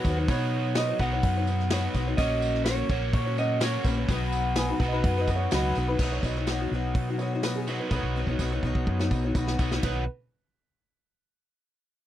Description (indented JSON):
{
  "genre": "folk rock and heartland rock",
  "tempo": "126 BPM",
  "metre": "4/4",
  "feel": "straight",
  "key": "B major",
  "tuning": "A4 = 440 Hz",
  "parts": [
    { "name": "electric guitar through a small old amp", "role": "melody", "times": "0.0-5.5 s", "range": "B4 to F#5", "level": "-32 LUFS", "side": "right 3 dB", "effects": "none" },
    { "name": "picked twelve-string acoustic guitar", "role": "accompaniment", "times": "0.0-10.0 s", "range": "B2 to C#5", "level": "-32 LUFS", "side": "left 5 dB", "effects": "none" },
    { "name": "overdriven electric guitar", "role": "riff", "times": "0.0-10.0 s", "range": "B2 to C#5", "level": "-32 LUFS", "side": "right 1 dB", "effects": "none" },
    { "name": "hollow-body short-scale fingered electric bass", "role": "bass", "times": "0.0-10.1 s", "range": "A#1 to B2", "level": "-28 LUFS", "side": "equal", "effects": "none" },
    { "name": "natural country drum kit", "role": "drums", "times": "0.0-9.9 s", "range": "crash cymbal, hi-hat, kick drum, ride cymbal, snare drum", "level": "-29 LUFS", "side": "equal", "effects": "none" },
    { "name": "tambourine", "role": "percussion", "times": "0.1-10.1 s", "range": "none", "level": "-45 LUFS", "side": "right 14 dB", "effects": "none" },
    { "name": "dark upright piano", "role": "second line", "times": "4.6-10.1 s", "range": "F#4 to G#5", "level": "-36 LUFS", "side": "right 7 dB", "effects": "none" }
  ],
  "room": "little or no reverb",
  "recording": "dry, close 1970s-style studio recording",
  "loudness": "-24 LUFS",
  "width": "side -12 dB against mid",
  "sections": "0.0-6.0 A section; 6.0-9.8 B section; 9.8-11.8 C section",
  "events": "drum fill 7.9-9.8",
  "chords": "0.0 Badd9; 2.2 F#/A#; 4.1 Badd9; 9.8 B"
}